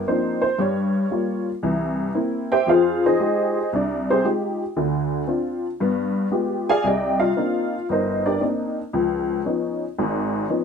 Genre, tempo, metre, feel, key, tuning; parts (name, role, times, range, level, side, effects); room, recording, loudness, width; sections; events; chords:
solo jazz; 115 BPM; 4/4; swing 69% on 8ths; C minor; A4 = 440 Hz
honky-tonk upright piano; solo; 0.0-10.6 s; G1 to Ab5; -20 LUFS; left 1 dB
light reverb; minimal, uncompressed stereo recording; -20 LUFS; side -6 dB against mid
0.0-10.6 A section
honky-tonk piano solo 0.0-10.6
0.0 Cm11; 0.6 Gm7b5; 1.6 C7; 2.7 Fm9; 4.8 Dm7; 5.8 G7b9; 6.8 Cm9; 8.9 Db9